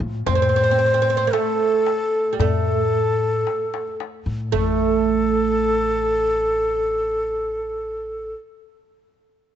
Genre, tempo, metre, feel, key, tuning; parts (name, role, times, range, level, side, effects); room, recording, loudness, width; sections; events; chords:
Arabic maqam ensemble; 112 BPM; 4/4; straight; A minor; A4 = 440 Hz
upright bass; bass; 0.0-8.3 s; A1 to A2; -26 LUFS; left 1 dB
darbuka; percussion; 0.1-4.8 s; -26 LUFS; left 5 dB
breathy ney; melody; 0.3-8.3 s; A4 to C5; -21 LUFS; left 1 dB
oud; second line; 0.3-8.3 s; G3 to C4; -24 LUFS; right 10 dB
moderate plate reverb, RT60 2.9 s; 1960s-style stereo, nothing above 8.0 kHz; -18 LUFS; side -10 dB against mid
0.0-4.5 A section; 4.5-8.8 B section